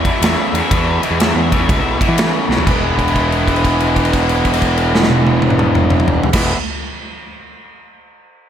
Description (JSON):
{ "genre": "blues rock power trio and southern rock", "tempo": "123 BPM", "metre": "4/4", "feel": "swing 65% on 8ths", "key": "E major", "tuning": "A4 = 443 Hz", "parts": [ { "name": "overdriven slide guitar", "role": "melody", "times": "0.0-2.1 s", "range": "E5", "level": "-26 LUFS", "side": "left 4 dB", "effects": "analog delay" }, { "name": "tight distorted guitar", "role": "riff", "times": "0.0-6.5 s", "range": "E2 to E4", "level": "-17 LUFS", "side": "equal", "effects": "distortion" }, { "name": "fuzz picked electric bass", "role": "bass", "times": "0.0-6.5 s", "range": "E1 to E3", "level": "-18 LUFS", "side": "equal", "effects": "overdrive" }, { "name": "big rock drum kit", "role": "drums", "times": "0.0-6.5 s", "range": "crash cymbal, kick drum, ride cymbal, snare drum, toms", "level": "-17 LUFS", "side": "equal", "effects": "none" } ], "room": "light reverb, small room ambience", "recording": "none", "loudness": "-12 LUFS", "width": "side -9 dB against mid", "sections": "0.0-2.7 A section; 2.7-6.6 B section", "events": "drum fill 2.4; held note 2.7-6.3", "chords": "0.0 E5; 2.7 E" }